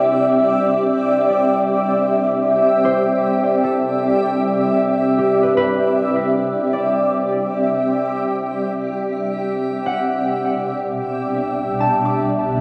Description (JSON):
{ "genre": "ambient", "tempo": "77 BPM", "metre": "4/4", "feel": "straight", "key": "C lydian", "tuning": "A4 = 440 Hz", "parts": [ { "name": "granular cloud pad", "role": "sustained chords", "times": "0.0-12.6 s", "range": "B2 to E5", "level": "-19 LUFS", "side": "equal", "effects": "built-in reverb" }, { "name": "concert harp", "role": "arpeggios", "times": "0.0-12.6 s", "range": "G4 to D6", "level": "-26 LUFS", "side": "equal", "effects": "analog delay" } ], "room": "wet spring reverb, RT60 2.6 s", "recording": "echo-heavy mix", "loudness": "-18 LUFS", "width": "mono", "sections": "0.0-12.6 A section", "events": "none", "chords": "0.0 Cmaj9; 10.3 Gmaj9/B" }